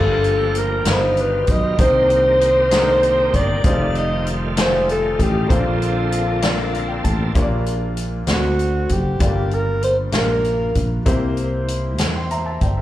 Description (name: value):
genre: slow gospel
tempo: 65 BPM (dotted quarters)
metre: 6/8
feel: straight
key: Bb major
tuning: A4 = 437 Hz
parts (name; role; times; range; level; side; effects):
- mellow alto saxophone; melody; 0.0-10.8 s; F4 to Eb5; -19 LUFS; equal; slapback echo
- clear grand piano; accompaniment; 0.0-12.8 s; G2 to C6; -24 LUFS; left 2 dB; slapback echo
- bright tonewheel organ; sustained chords; 0.0-7.3 s; B2 to A4; -26 LUFS; right 1 dB; slow rotary speaker, overdrive, chorus vibrato
- sustaining fretless electric bass; bass; 0.0-12.8 s; F1 to E2; -22 LUFS; equal; none
- swinging big-band drum kit; drums; 0.2-12.8 s; hi-hat, kick drum, snare drum; -21 LUFS; equal; none
room: small room ambience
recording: live gig heard through the venue's PA, club reverb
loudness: -16 LUFS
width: side -14 dB against mid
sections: 0.0-7.3 A section; 7.3-12.8 B section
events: grand piano fill 6.4-7.3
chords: 0.0 Gm9; 0.9 G7b13; 1.8 Cm9; 3.6 F9; 5.5 Bbmaj9; 7.3 Bb6; 8.3 D7; 9.2 Gm7; 11.1 C7